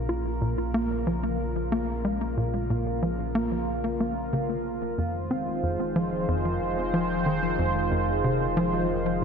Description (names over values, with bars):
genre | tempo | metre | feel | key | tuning
ambient, sequencer-driven space music | 92 BPM | 4/4 | straight | Bb minor | A4 = 440 Hz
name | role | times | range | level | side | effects
sweeping resonant pad | sustained chords | 0.0-9.2 s | Db3 to C5 | -28 LUFS | right 1 dB | chorus
tight sequencer bass | riff | 0.0-9.2 s | F2 to F4 | -28 LUFS | left 1 dB | tape echo
warm sub bass | bass | 0.0-9.2 s | F1 to Bb1 | -35 LUFS | equal | none
room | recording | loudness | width
wet lush hall reverb, RT60 2.7 s | dreamy mix soaked in reverb | -24 LUFS | side -6 dB against mid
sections
0.0-9.2 A section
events
fade-in on analog synth pad 0.0-9.2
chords
0.0 Bbm; 5.0 Fm7